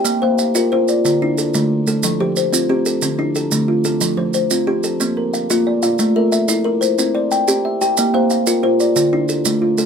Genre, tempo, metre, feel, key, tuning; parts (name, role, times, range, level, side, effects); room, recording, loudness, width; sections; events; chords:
southern african traditional, mbira-style interlocking cycle; 121 BPM (dotted quarters); 12/8; straight; F major; A4 = 440 Hz
kalimba; arpeggios; 0.0-9.9 s; D3 to G5; -17 LUFS; left 3 dB
kalimba; arpeggios; 0.0-9.9 s; D3 to G5; -19 LUFS; right 3 dB
maracas; percussion; 0.1-9.9 s; -22 LUFS; right 8 dB
light reverb; -14 LUFS; side -6 dB against mid
0.0-9.9 A section
0.1 Bb; 1.1 Dm; 2.0 F; 3.0 Dm; 4.0 F; 5.0 Bb; 6.0 Am; 7.0 C; 8.0 Bb; 9.0 Dm